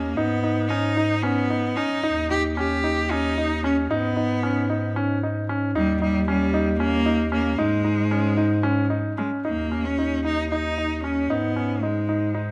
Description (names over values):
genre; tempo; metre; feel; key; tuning
contemporary instrumental, chamber music in an uneven meter; 227 BPM (eighths); 7/8; straight; G# harmonic minor; A4 = 442 Hz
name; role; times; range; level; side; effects
clear cello; melody; 0.0-12.5 s; G3 to G4; -28 LUFS; equal; none
clear concert grand piano; arpeggios; 0.0-12.5 s; C#4 to D#4; -27 LUFS; equal; none
dark bass clarinet; bass; 0.0-12.5 s; D#2 to G#2; -29 LUFS; equal; none
room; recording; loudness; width
light reverb; none; -23 LUFS; mono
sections
0.0-9.4 A section; 9.4-12.5 A section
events
none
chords
0.2 G#m; 2.0 D#; 3.9 G#m; 5.7 D#; 7.6 G#5; 9.4 A#madd11/D#; 11.3 G#m